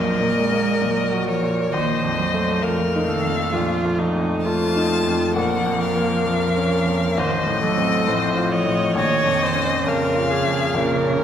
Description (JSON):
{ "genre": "classical, slow romantic movement for piano quartet", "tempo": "67 BPM", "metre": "4/4", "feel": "rubato", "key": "Bb minor", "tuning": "A4 = 439 Hz", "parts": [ { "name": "rich violin", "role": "melody", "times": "0.0-11.2 s", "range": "Db5 to A5", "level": "-25 LUFS", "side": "left 5 dB", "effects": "none" }, { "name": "rich cello", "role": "second line", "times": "0.0-11.2 s", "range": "Db3 to Ab3", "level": "-24 LUFS", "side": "right 3 dB", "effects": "none" }, { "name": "bright baby grand piano", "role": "accompaniment", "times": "0.0-11.2 s", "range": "A1 to Gb4", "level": "-23 LUFS", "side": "left 2 dB", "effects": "none" }, { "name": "rich viola", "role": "accompaniment", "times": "0.0-11.2 s", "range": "Eb4 to Eb5", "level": "-24 LUFS", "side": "right 2 dB", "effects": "none" } ], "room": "wet scoring stage reverb, RT60 1.9 s", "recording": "none", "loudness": "-18 LUFS", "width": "side -9 dB against mid", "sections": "0.0-11.2 A section", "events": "none", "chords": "0.0 Gbmaj13/Bb; 1.7 F7/Bb; 5.4 Bbm; 7.2 F7/A; 9.0 Bbm" }